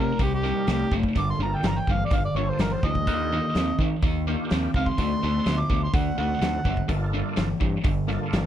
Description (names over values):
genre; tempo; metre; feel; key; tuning
blues rock power trio and southern rock; 125 BPM; 4/4; straight; G minor; A4 = 442 Hz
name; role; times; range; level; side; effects
overdriven harmonica; melody; 0.0-6.9 s; G4 to D6; -29 LUFS; right 1 dB; none
distorted electric guitar; riff; 0.0-8.5 s; G2 to C4; -27 LUFS; left 1 dB; overdrive
growling fingered electric bass; bass; 0.0-8.5 s; F#1 to Eb3; -28 LUFS; equal; overdrive
big rock drum kit; drums; 0.2-8.4 s; hi-hat, kick drum, snare drum; -27 LUFS; equal; none
overdriven tonewheel organ; sustained chords; 0.4-8.5 s; D3 to Bb4; -36 LUFS; right 4 dB; chorus vibrato, slow rotary speaker
room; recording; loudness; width
small room ambience; dry, close 1970s-style studio recording; -22 LUFS; side -10 dB against mid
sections
0.0-8.5 A section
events
none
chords
0.0 Cm7; 1.1 Gm7; 3.1 Ebmaj7; 5.0 D7b9; 6.9 Gm7